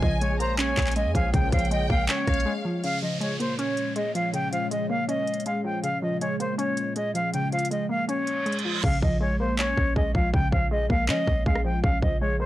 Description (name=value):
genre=hip hop, trap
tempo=160 BPM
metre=4/4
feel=half-time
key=Bb dorian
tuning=A4 = 440 Hz
part: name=reedy silver concert flute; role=melody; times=0.0-12.5 s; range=C5 to G5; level=-28 LUFS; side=equal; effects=none
part: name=warm studio violin section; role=second line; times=0.0-2.8 s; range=F5 to Bb5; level=-35 LUFS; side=equal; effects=analog delay
part: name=warbly dusty pluck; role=accompaniment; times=0.0-12.5 s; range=Db3 to Db4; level=-28 LUFS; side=equal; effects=chorus
part: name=warbly tape-like pad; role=sustained chords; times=0.1-8.8 s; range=Bb2 to Db5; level=-36 LUFS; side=left 2 dB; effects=chorus, built-in reverb
part: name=mellow synth brass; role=stabs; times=0.0-1.6 s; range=Db2 to F3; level=-36 LUFS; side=left 1 dB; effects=chorus, analog delay
part: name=clean 808-style bass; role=bass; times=0.0-2.5, 8.8-12.5 s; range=Bb1 to F3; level=-27 LUFS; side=equal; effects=none
part: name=trap drum kit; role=drums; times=0.0-12.1 s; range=crash cymbal, handclaps, hi-hat, kick drum, rim click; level=-27 LUFS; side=equal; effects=none
part: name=downlifter and reverse cymbal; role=sound effects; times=2.8-8.8 s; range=none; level=-34 LUFS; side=right 3 dB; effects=none
room=digital ambience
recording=dry, gritty hardware recording, transformer saturation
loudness=-23 LUFS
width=side -15 dB against mid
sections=0.0-2.8 A section; 2.8-8.8 B section; 8.8-12.5 C section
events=break 2.5-2.8; reverse cymbal 8.3-8.8; hi-hats muted 8.8-12.5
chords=0.0 Bbm7